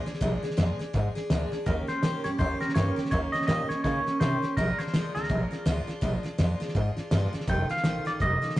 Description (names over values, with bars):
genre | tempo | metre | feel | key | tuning
rockabilly | 165 BPM | 4/4 | swing 60% on 8ths | Bb mixolydian | A4 = 440 Hz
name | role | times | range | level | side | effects
picked steel-string acoustic guitar | accompaniment | 0.0-8.6 s | F2 to Ab4 | -33 LUFS | right 1 dB | none
upright bass | bass | 0.1-8.6 s | F1 to Db3 | -29 LUFS | equal | none
cloth-damped thuddy drum kit | drums | 0.1-8.6 s | hi-hat, kick drum, snare drum | -30 LUFS | equal | none
twangy electric guitar | melody | 1.7-8.6 s | Bb4 to G5 | -30 LUFS | equal | spring reverb
room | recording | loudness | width
wet booth ambience, RT60 0.2 s | rough rehearsal-room recording, tube saturation, nothing above 10.3 kHz | -25 LUFS | side -16 dB against mid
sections
0.0-8.6 A section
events
none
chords
0.0 Bb7; 1.7 Eb7; 4.6 Bb7; 7.5 F7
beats
| 0.21 0.57 0.94 1.30 | 1.67 2.03 2.39 2.76 | 3.12 3.48 3.85 4.21 | 4.57 4.93 5.30 5.66 | 6.03 6.39 6.75 7.12 | 7.48 7.84 8.20 8.57